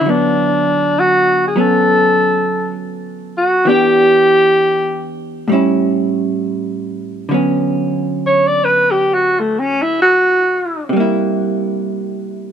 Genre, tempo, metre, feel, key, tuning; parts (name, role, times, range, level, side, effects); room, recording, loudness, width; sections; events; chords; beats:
jazz ballad; 66 BPM; 4/4; swing 66% on 8ths; D major; A4 = 436 Hz
breathy alto saxophone; melody; 0.0-10.9 s; A3 to D5; -12 LUFS; equal
vintage hollow-body jazz guitar; accompaniment; 0.0-12.5 s; A2 to G4; -17 LUFS; right 2 dB
light reverb; minimal, uncompressed stereo recording; -12 LUFS; side -8 dB against mid
0.0-7.3 A section; 7.3-12.5 B section
alto saxophone solo 7.3-12.5
0.0 D6; 3.7 Em7; 5.5 A7; 7.3 D6; 10.9 C7
| 0.05 0.95 1.85 2.76 | 3.66 4.57 5.47 6.38 | 7.29 8.19 9.10 10.00 | 10.90 11.81